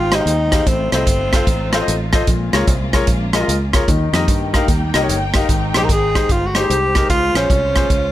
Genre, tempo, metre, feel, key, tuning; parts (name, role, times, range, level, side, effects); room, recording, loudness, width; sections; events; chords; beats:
uptempo gospel; 149 BPM; 4/4; swing 64% on 8ths; Ab major; A4 = 439 Hz
breathy tenor saxophone; melody; 0.0-2.1, 5.8-8.1 s; C4 to Bb4; -18 LUFS; equal
warm symphonic string section; sustained chords; 0.0-8.1 s; G3 to G5; -27 LUFS; left 1 dB
fingered electric bass; bass; 0.0-8.1 s; G1 to G2; -21 LUFS; equal
warm concert grand piano; accompaniment; 0.1-7.9 s; Ab2 to F5; -22 LUFS; left 3 dB
warm soul drum kit; drums; 0.1-8.0 s; hi-hat, kick drum, rim click; -17 LUFS; equal
light reverb; -14 LUFS; side -13 dB against mid
0.0-8.1 A section
0.0 Abmaj7; 0.7 F7; 2.3 Bbm7; 3.9 Eb; 5.5 Abmaj7; 7.1 Dbmaj7
0.26 | 0.67 1.07 1.47 1.87 | 2.27 2.68 3.08 3.48 | 3.88 4.29 4.69 5.09 | 5.49 5.89 6.30 6.70 | 7.10 7.50 7.90